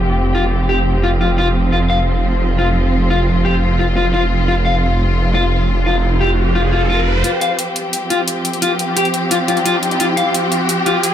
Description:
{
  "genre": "dark technical drum and bass",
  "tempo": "174 BPM",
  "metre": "4/4",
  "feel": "straight",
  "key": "unclear",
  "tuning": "A4 = 439 Hz",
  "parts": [
    { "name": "muted studio string section", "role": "sustained chords", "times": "0.0-11.1 s", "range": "F3 to G4", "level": "-19 LUFS", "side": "equal", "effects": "low-pass filter" },
    { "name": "snarling distorted saw bass", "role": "bass", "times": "0.0-7.2 s", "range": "F1", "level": "-16 LUFS", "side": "right 1 dB", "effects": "distortion, overdrive" },
    { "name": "electric guitar at the edge of break-up", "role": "arpeggios", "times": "0.3-11.0 s", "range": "F4 to F5", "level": "-19 LUFS", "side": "left 3 dB", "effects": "dub echo" },
    { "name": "riser", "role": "sound effects", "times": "5.2-11.1 s", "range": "none", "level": "-23 LUFS", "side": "equal", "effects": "none" },
    { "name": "electronic hi-hat", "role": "drums", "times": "7.2-11.1 s", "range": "none", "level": "-21 LUFS", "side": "left 1 dB", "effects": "none" }
  ],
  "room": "light reverb, digital ambience",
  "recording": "none",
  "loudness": "-13 LUFS",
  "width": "side -10 dB against mid",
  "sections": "0.0-7.2 A section; 7.2-11.1 B section",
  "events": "filter sweep on string section 0.0-7.2; riser 5.2-7.2, 7.2-11.1; build-up 7.2-11.1",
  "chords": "0.0 F5",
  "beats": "0.00 | 0.34 0.69 1.03 1.38 | 1.72 2.07 2.41 2.76 | 3.10 3.45 3.79 4.14 | 4.48 4.83 5.17 5.52 | 5.86 6.21 6.55 6.90 | 7.24 7.59 7.93 8.28 | 8.62 8.97 9.31 9.65 | 10.00 10.35 10.69 11.04"
}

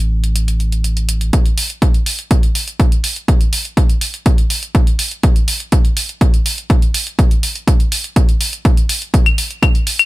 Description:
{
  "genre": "melodic techno",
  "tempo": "123 BPM",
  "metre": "4/4",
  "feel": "straight",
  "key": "unclear",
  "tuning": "A4 = 435 Hz",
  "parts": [
    { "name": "tight sequencer bass", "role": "bass", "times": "0.0-1.3 s", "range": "A1", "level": "-15 LUFS", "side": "equal", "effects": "sidechain pumping" },
    { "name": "electronic hi-hat and claves", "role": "drums", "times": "0.2-10.1 s", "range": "none", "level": "-18 LUFS", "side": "left 1 dB", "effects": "sidechain pumping on hats, high-pass filter on hats, sidechain pumping on perc, high-pass filter on perc, high-pass filter on room" },
    { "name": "electronic kick drum", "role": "drums", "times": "1.3-9.7 s", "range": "none", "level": "-12 LUFS", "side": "equal", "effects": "none" }
  ],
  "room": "little or no reverb",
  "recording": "none",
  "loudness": "-13 LUFS",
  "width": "side -19 dB against mid",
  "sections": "0.0-1.3 A section; 1.3-10.1 B section",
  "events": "build-up 1.3-10.1",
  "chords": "none",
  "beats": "0.36 0.85 | 1.33 1.82 2.31 2.80 | 3.29 3.77 4.26 4.75 | 5.24 5.72 6.21 6.70 | 7.19 7.67 8.16 8.65 | 9.14 9.63"
}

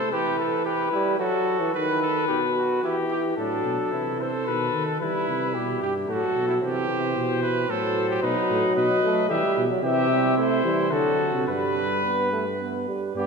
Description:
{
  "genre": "classical, imitative canzona for brass ensemble",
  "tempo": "111 BPM",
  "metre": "3/4",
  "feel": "straight",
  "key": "G major from 9.8 s",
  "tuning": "A4 = 440 Hz",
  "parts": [
    { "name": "warm cornet", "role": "melody", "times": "0.0-13.3 s", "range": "G4 to E5", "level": "-27 LUFS", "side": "left 7 dB", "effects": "none" },
    { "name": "clear trumpet", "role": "second line", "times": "0.0-13.3 s", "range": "D4 to B4", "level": "-28 LUFS", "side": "right 4 dB", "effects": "none" },
    { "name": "mellow trombone", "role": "accompaniment", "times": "0.0-13.3 s", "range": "B2 to B3", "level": "-27 LUFS", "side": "right 2 dB", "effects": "none" },
    { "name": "mellow bass trombone", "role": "bass", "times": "3.4-13.3 s", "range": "G2 to F#3", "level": "-28 LUFS", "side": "right 2 dB", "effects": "none" }
  ],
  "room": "wet church reverb, RT60 3.0 s",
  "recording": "minimal, uncompressed stereo recording",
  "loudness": "-21 LUFS",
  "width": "side -4 dB against mid",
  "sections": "0.0-3.4 A section; 3.4-13.2 B section",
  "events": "none",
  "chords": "0.1 Em; 1.2 Esus24; 1.7 B/D#; 2.8 Em; 3.4 Am; 4.5 B; 5.0 Em; 6.1 F#madd11/A; 6.6 C; 7.7 F#dim/A; 8.2 B; 9.3 Em; 9.8 C; 10.9 D; 11.5 G",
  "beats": "| 0.12 0.66 1.19 | 1.74 2.28 2.83 | 3.38 3.92 4.47 | 5.01 5.55 6.09 | 6.63 7.16 7.70 | 8.23 8.77 9.30 | 9.84 10.38 10.92 | 11.48 12.04 12.61 | 13.16"
}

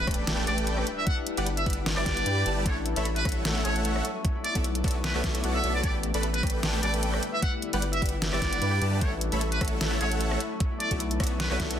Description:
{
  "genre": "future bass",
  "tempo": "151 BPM",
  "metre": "4/4",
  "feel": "swing 54% on 16ths, half-time",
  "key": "B minor",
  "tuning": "A4 = 440 Hz",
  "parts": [
    { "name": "trumpet with metal mute", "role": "melody", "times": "0.0-11.6 s", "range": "B4 to F#5", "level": "-32 LUFS", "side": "right 1 dB", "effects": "sidechain pumping, dub echo" },
    { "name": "shimmering ambient pad", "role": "sustained chords", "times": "0.0-11.8 s", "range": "D3 to F#5", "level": "-38 LUFS", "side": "left 1 dB", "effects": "chorus, built-in reverb, sidechain pumping" },
    { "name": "concert harp", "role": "arpeggios", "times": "0.0-11.8 s", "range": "A3 to E5", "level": "-37 LUFS", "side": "left 8 dB", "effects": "sidechain pumping, dub echo" },
    { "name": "saturated sub bass", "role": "bass", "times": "0.0-11.8 s", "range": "G1 to G2", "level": "-30 LUFS", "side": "equal", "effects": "sidechain pumping" },
    { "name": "impact", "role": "sound effects", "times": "0.0-1.1 s", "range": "none", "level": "barely audible", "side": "none", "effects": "none" },
    { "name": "dense compressed supersaw", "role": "riff", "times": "0.1-11.8 s", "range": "G3 to B5", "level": "-32 LUFS", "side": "right 1 dB", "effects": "sidechain pumping" },
    { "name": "electronic kick drum", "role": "drums", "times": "0.1-11.7 s", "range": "none", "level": "-29 LUFS", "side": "equal", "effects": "overdrive" },
    { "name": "pop drum kit", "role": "drums", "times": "0.1-11.8 s", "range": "hi-hat, rim click, snare drum", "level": "-32 LUFS", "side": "equal", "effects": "overdrive" }
  ],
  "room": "light reverb",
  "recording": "dense, heavily limited modern master",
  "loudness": "-25 LUFS",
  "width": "side -9 dB against mid",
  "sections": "0.0-11.8 A section",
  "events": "impact 0.0-1.1",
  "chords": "0.0 A9sus4; 0.9 Em9/G; 2.7 F#m7/A; 4.0 Bm11; 5.8 A9sus4; 7.2 Em9/G; 9.0 F#m7/A; 10.4 Bm11",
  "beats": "0.27 0.67 | 1.07 1.47 1.86 2.26 | 2.66 3.06 3.45 3.85 | 4.25 4.64 5.04 5.44 | 5.84 6.23 6.63 7.03 | 7.42 7.82 8.22 8.62 | 9.02 9.41 9.81 10.21 | 10.60 11.00 11.40"
}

